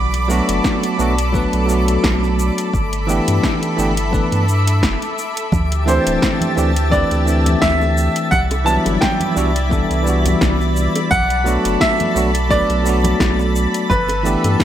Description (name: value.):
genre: sunset chillout.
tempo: 86 BPM.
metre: 4/4.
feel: swing 55% on 16ths.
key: G major.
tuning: A4 = 440 Hz.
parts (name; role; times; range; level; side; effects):
lush unison pad; sustained chords; 0.0-14.6 s; E4 to B5; -24 LUFS; equal; chorus.
warm sub bass; bass; 0.0-14.6 s; D1 to G2; -18 LUFS; equal; none.
twinkling granular texture; texture; 0.0-14.6 s; D6 to A6; -29 LUFS; equal; built-in reverb.
deep house drum kit; drums; 0.1-14.6 s; hi-hat, shaker, snare drum; -23 LUFS; left 1 dB; overdrive.
bell-like tine electric piano; accompaniment; 0.3-14.6 s; E3 to B4; -20 LUFS; equal; auto-pan, digital delay.
electronic kick drum; drums; 0.6-14.6 s; none; -21 LUFS; equal; overdrive.
congas and bongos; percussion; 5.5-14.6 s; none; -25 LUFS; right 2 dB; none.
bright concert grand piano; melody; 5.9-14.6 s; B4 to A5; -20 LUFS; right 1 dB; digital delay.
room: light reverb.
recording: none.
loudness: -14 LUFS.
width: side -11 dB against mid.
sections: 0.0-14.6 A section.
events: none.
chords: 0.0 Bm7; 2.7 G69; 5.5 D9sus4; 8.3 Cmaj9#11; 11.1 Bm7; 13.9 G69.